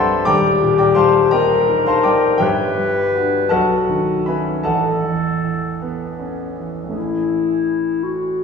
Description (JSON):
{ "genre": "classical, impressionist duo for clarinet and grand piano", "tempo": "51-57 BPM (dotted quarters)", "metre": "6/8", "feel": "rubato", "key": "unclear", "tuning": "A4 = 440 Hz", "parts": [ { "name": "mellow clarinet", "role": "melody", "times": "0.0-8.4 s", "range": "E4 to B4", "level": "-18 LUFS", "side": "left 5 dB", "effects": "none" }, { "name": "warm grand piano", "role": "accompaniment", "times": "0.0-8.4 s", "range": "D#1 to D6", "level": "-18 LUFS", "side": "equal", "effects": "none" } ], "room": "wet recital hall reverb, RT60 1.8 s", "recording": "heard from further back in the room, studio ambience", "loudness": "-15 LUFS", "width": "side -5 dB against mid", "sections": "0.0-7.0 A section; 7.0-8.4 B section", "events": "none", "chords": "0.3 D#maj7; 2.4 Gmaj7; 3.5 B9; 4.7 A69; 7.0 Amaj7", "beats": "| 0.27 1.33 | 2.41 3.51 | 4.65 5.81 | 6.96 8.04" }